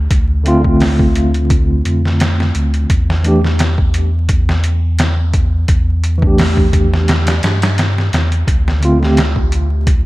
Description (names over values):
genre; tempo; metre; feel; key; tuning
trip hop; 86 BPM; 4/4; swing 54% on 16ths; D minor; A4 = 439 Hz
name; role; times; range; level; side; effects
warm sub bass; bass; 0.0-10.1 s; D2 to G2; -14 LUFS; equal; none
trip hop sampler-style drum kit; drums; 0.1-10.0 s; hi-hat, kick drum, snare drum; -16 LUFS; equal; overdrive, studio ambience
mellow tine electric piano; accompaniment; 0.4-9.2 s; D3 to G4; -16 LUFS; equal; tremolo, low-pass filter, tape echo
room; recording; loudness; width
light reverb; vinyl crackle; -11 LUFS; side -19 dB against mid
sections
0.0-10.1 A section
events
none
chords
0.0 Dm7; 2.9 A7sus4/E; 8.5 D7(no3)